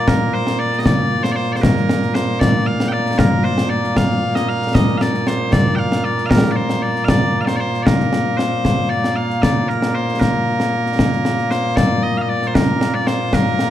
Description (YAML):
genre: scottish traditional, Scottish pipe music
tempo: 77 BPM (dotted quarters)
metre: 6/8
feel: straight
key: Bb major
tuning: A4 = 442 Hz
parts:
  - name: loud bright bagpipes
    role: melody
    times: 0.0-13.7 s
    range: Bb2 to G5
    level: -18 LUFS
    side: equal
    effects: none
  - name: concert snare drum and concert bass drum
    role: drums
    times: 0.1-13.7 s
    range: none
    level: -17 LUFS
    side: left 1 dB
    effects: none
room: light reverb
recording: dark, warm production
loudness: -15 LUFS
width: side -12 dB against mid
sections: 0.0-11.8 A section; 11.8-13.7 B section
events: none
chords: none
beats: 0.08 | 0.86 1.64 | 2.42 3.19 | 3.97 4.75 | 5.53 6.31 | 7.09 7.87 | 8.65 9.43 | 10.21 10.99 | 11.77 12.54 | 13.32